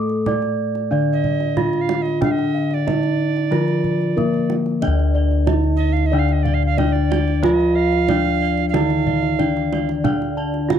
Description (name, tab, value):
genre	Javanese gamelan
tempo	92 BPM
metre	4/4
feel	straight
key	D pelog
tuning	A4 = 440 Hz
part	gamelan-type bronze metallophone	melody	0.0-10.8 s	Bb3 to D5	-22 LUFS	equal	none
part	gamelan-type bronze metallophone	accompaniment	0.0-10.8 s	D3 to D4	-24 LUFS	left 1 dB	none
part	gamelan-type bossed gongs	arpeggios	0.0-10.8 s	Bb4 to D6	-30 LUFS	left 8 dB	none
part	gamelan-type bossed gongs	bass	0.0-10.8 s	D2 to A4	-21 LUFS	left 1 dB	none
part	kendang	percussion	0.1-10.8 s	none	-26 LUFS	right 8 dB	none
part	alto recorder	second line	1.1-9.9 s	D5 to F5	-26 LUFS	right 14 dB	none
part	gamelan-type bronze metallophone	arpeggios	4.8-10.8 s	D5 to F5	-33 LUFS	right 8 dB	none
room	small room ambience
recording	dry, close 1970s-style studio recording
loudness	-16 LUFS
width	side -9 dB against mid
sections	0.0-4.8 A section; 4.8-10.8 A section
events	none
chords	none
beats	0.26 0.91 1.56 | 2.21 2.87 3.52 4.17 | 4.82 5.48 6.13 6.78 | 7.43 8.09 8.74 9.39 | 10.04 10.69